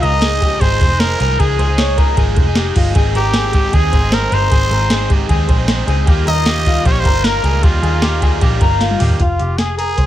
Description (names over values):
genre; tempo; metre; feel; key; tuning
jangly indie pop; 154 BPM; 4/4; straight; unclear; A4 = 438 Hz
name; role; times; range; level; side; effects
growling trumpet; melody; 0.0-10.1 s; F4 to Eb5; -19 LUFS; right 1 dB; slapback echo
crunchy overdriven guitar; accompaniment; 0.0-9.2 s; Ab2 to Ab4; -23 LUFS; right 6 dB; none
electric guitar through a small old amp; arpeggios; 0.0-10.1 s; F4 to Db5; -20 LUFS; left 4 dB; none
vintage muted picked electric bass; bass; 0.0-10.1 s; F1 to Eb2; -17 LUFS; equal; none
soft vintage rhythm box; drums; 0.0-10.1 s; hi-hat, kick drum, ride cymbal, snare drum, toms; -16 LUFS; equal; none
room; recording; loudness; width
light reverb, digital ambience; none; -12 LUFS; side -12 dB against mid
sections
0.0-9.2 A section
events
drum fill 8.8-9.2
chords
0.0 Dbadd9; 3.0 Ab; 6.1 Ebadd9; 9.2 Fmadd9